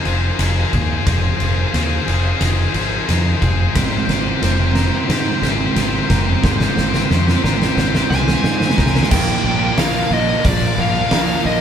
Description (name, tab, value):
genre	post-rock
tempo	90 BPM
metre	4/4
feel	straight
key	unclear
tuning	A4 = 440 Hz
part	bright studio string section	sustained chords	0.0-11.6 s	F4 to Eb6	-32 LUFS	right 1 dB	none
part	clean electric guitar	arpeggios	0.0-9.1 s	F3 to Bb4	-28 LUFS	left 1 dB	none
part	distorted electric guitar	riff	0.0-11.6 s	Bb2 to C5	-22 LUFS	left 6 dB	overdrive
part	growling fingered electric bass	bass	0.1-11.6 s	F1 to Ab2	-20 LUFS	equal	overdrive
part	oversized low-tuned drum kit	drums	0.1-11.3 s	crash cymbal, hi-hat, kick drum, ride cymbal, snare drum	-19 LUFS	equal	none
part	thick fuzz guitar	riff	3.7-11.6 s	Bb2 to C4	-22 LUFS	right 7 dB	distortion
part	dark smooth lead guitar	melody	8.1-11.6 s	D5 to Ab5	-21 LUFS	equal	overdrive
room	wet studio reverb, RT60 0.8 s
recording	band playing live in one room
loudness	-14 LUFS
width	side -8 dB against mid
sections	0.0-9.1 A section; 9.1-11.6 B section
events	build-up 0.0-9.1; drum fill 0.0-9.1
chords	0.0 Fm7; 3.8 Abmaj9; 9.1 Bb